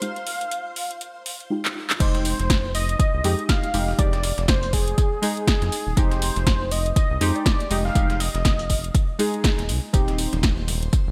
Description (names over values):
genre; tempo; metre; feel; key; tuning
deep house; 121 BPM; 4/4; swing 58% on 16ths; F dorian; A4 = 440 Hz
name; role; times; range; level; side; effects
warm velvety synth lead; melody; 0.0-8.9 s; Ab4 to F5; -31 LUFS; equal; chorus, digital delay
deep mellow chord stab; stabs; 0.0-11.1 s; Ab3 to Ab4; -30 LUFS; equal; chorus, sidechain pumping, digital delay
deep house drum kit; drums; 0.0-11.0 s; crash cymbal, handclaps, hi-hat, snare drum; -29 LUFS; equal; overdrive
string machine, violins; texture; 0.0-1.5, 9.9-11.1 s; C5 to C6; -45 LUFS; equal; ensemble chorus, sidechain pumping
round analog bass; bass; 2.0-11.1 s; Eb1 to F2; -28 LUFS; equal; sidechain pumping
dusty soul sampler-style drum kit; drums; 2.0-11.1 s; hi-hat, snare drum, tambourine; -37 LUFS; equal; overdrive, sidechain pumping on perc, high-pass filter on perc, high-pass filter on snare, sidechain pumping on hats, high-pass filter on hats, high-pass filter on room
electronic kick drum; drums; 2.0-11.0 s; none; -23 LUFS; equal; overdrive
congas; percussion; 9.9-11.0 s; none; -38 LUFS; equal; none
room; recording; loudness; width
light reverb; bright 1980s-style digital production; -22 LUFS; mono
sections
0.0-2.0 A section; 2.0-11.1 B section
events
drum fill 1.6-2.0; drop 2.0-11.1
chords
0.0 Fm9; 9.9 Eb6